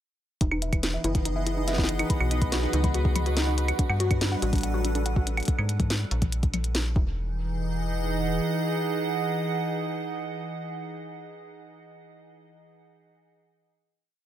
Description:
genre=IDM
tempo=142 BPM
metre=4/4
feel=straight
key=unclear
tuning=A4 = 439 Hz
part: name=icy glass pad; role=sustained chords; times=0.7-11.3 s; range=B2 to F#5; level=-31 LUFS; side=right 2 dB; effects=chorus, built-in reverb
part: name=warbly dusty pluck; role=arpeggios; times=0.4-7.4 s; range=D4 to B5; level=-32 LUFS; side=left 3 dB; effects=chorus, cassette tape, digital delay
part: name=metallic FM bass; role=bass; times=0.4-8.4 s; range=E1 to G#2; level=-28 LUFS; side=equal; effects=none
part: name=electronic kick drum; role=drums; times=0.4-7.0 s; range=none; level=-26 LUFS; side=equal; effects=none
part: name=glitchy drum kit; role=drums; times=0.4-6.8 s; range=claves, hi-hat, snare drum, toms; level=-30 LUFS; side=equal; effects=none
part: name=pulsing gated texture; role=texture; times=0.4-5.5 s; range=B4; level=-39 LUFS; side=right 5 dB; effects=chorus, built-in reverb, sidechain pumping
room=light reverb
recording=none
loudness=-24 LUFS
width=side -11 dB against mid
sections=0.4-7.2 groove; 7.2-10.5 final chord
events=none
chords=0.4 Emaj7; 2.1 B; 3.8 Gmaj7; 5.5 G#sus2; 7.0 N.C.; 7.2 Emaj7

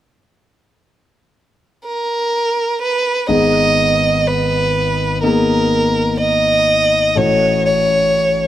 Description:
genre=pop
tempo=62 BPM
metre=4/4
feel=straight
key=unclear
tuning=A4 = 440 Hz
part: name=warm violin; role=melody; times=1.9-8.5 s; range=A#4 to D#5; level=-14 LUFS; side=right 1 dB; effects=none
part: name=warm concert grand piano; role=accompaniment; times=3.3-8.5 s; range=G#1 to G#4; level=-17 LUFS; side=left 2 dB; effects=none
room=light reverb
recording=dark, warm production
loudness=-13 LUFS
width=side -12 dB against mid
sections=0.0-3.3 A section; 3.3-8.5 B section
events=none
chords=0.0 N.C.; 3.3 G#madd9; 7.2 A6

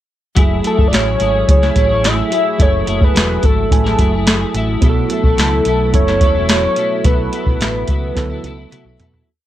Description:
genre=indie pop, bedroom pop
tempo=108 BPM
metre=4/4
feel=straight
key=F# minor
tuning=A4 = 439 Hz
part: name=mellow tine electric piano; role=accompaniment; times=0.4-9.3 s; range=F#3 to G#5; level=-22 LUFS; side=right 6 dB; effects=overdrive, cassette tape
part: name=twelve-string electric guitar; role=accompaniment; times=0.4-9.3 s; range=B2 to G#4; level=-22 LUFS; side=left 4 dB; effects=ensemble chorus, warbly pitch drift
part: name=fingered electric bass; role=bass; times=0.4-9.2 s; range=E1 to B2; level=-20 LUFS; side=equal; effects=none
part: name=soft vintage rhythm box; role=drums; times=0.4-9.3 s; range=hi-hat, kick drum, snare drum, toms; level=-14 LUFS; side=equal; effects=vintage 12-bit sampler grit
part: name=soft octave-layered synth lead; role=melody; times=0.7-9.0 s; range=A4 to E5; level=-18 LUFS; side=left 1 dB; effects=analog chorus, tape echo
room=light reverb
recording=none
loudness=-12 LUFS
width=side -12 dB against mid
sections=0.4-9.3 verse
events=fade-out 7.1-9.3; drum fill 8.2-9.3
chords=0.4 F#m9; 4.8 B7sus4

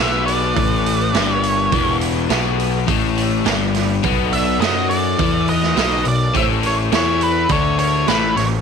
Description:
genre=blues rock power trio and southern rock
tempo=104 BPM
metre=4/4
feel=straight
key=unclear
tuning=A4 = 442 Hz
part: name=octave-fuzz lead guitar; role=melody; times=0.0-8.4 s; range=B4 to E5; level=-20 LUFS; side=right 1 dB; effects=distortion, slapback echo
part: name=lead guitar through a small cranked amp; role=second line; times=0.0-8.5 s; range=A4 to D5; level=-29 LUFS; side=right 13 dB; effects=overdrive
part: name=overdriven tonewheel organ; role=sustained chords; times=0.0-8.6 s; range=D#4 to E5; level=-30 LUFS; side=right 14 dB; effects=slow rotary speaker, chorus vibrato
part: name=crunchy overdriven guitar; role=riff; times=0.0-8.6 s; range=E2 to F#4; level=-20 LUFS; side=left 12 dB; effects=none
part: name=fuzz picked electric bass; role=bass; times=0.0-8.6 s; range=E1 to F#2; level=-22 LUFS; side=right 2 dB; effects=overdrive
part: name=raw garage drum kit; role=drums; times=0.3-8.5 s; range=hi-hat, kick drum, snare drum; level=-22 LUFS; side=right 6 dB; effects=none
room=light reverb, small room ambience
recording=1960s-style stereo with parts hard left and right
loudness=-15 LUFS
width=side -6 dB against mid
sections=0.0-8.6 A section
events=none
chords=0.0 E7#9; 4.0 B7#9; 6.3 A7#9

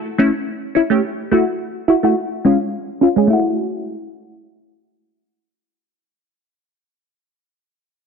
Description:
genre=dancehall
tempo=106 BPM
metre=4/4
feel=straight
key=F# minor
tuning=A4 = 440 Hz
part: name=wavetable chord stab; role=accompaniment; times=0.2-6.5 s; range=G#3 to G#4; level=-15 LUFS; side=equal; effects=low-pass filter
room=moderate lush hall reverb, RT60 1.7 s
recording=dense, heavily limited modern master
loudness=-15 LUFS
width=side -6 dB against mid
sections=0.0-3.3 A section; 3.3-5.6 B section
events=filter sweep on synth stab 0.0-3.3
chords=0.0 A; 1.0 F#m7; 2.2 C#; 3.3 F#m7

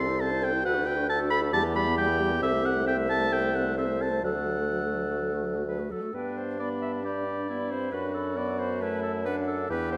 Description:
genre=quick classical-period movement for wind quintet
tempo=123-137 BPM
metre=4/4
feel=rubato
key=unclear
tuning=A4 = 439 Hz
part: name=hollow concert flute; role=melody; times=0.0-10.0 s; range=F#4 to B5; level=-39 LUFS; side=equal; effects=none
part: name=warm oboe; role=second line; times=0.0-10.0 s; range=D4 to C6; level=-33 LUFS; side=equal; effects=none
part: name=clear clarinet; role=accompaniment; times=0.0-10.0 s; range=G4 to E5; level=-37 LUFS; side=equal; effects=none
part: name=mellow French horn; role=accompaniment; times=0.0-10.0 s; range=F#3 to F#4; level=-37 LUFS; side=equal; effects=none
part: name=mellow bassoon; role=bass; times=0.0-10.0 s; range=C2 to G2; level=-32 LUFS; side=equal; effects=none
room=moderate scoring stage reverb, RT60 1.7 s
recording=none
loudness=-28 LUFS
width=mono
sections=0.0-6.2 A section; 6.2-10.0 B section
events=none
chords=0.0 Am/C; 0.7 D; 1.5 Em; 2.4 Am/C; 4.2 D; 6.2 G; 7.9 D/F#

